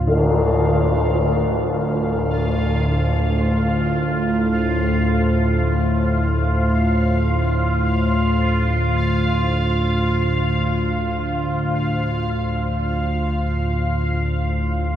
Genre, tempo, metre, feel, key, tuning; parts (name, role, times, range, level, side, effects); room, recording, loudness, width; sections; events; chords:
dark ambient drone; free time; D minor; A4 = 440 Hz
deep dark ambient pad; sustained chords; 0.0-15.0 s; D4 to C5; -29 LUFS; left 1 dB; chorus, built-in reverb
analog drone; drone; 0.0-15.0 s; D2 to A2; -19 LUFS; equal; chorus
bubbling stepped-filter texture; texture; 0.0-15.0 s; F4 to F5; -25 LUFS; right 1 dB; chorus, built-in reverb
wet huge ambient reverb, RT60 7.3 s; -17 LUFS; side -10 dB against mid
0.0-15.0 A section
fade-in on synth texture 0.0-15.0; fade-out on ambient pad 0.0-15.0
0.0 Dm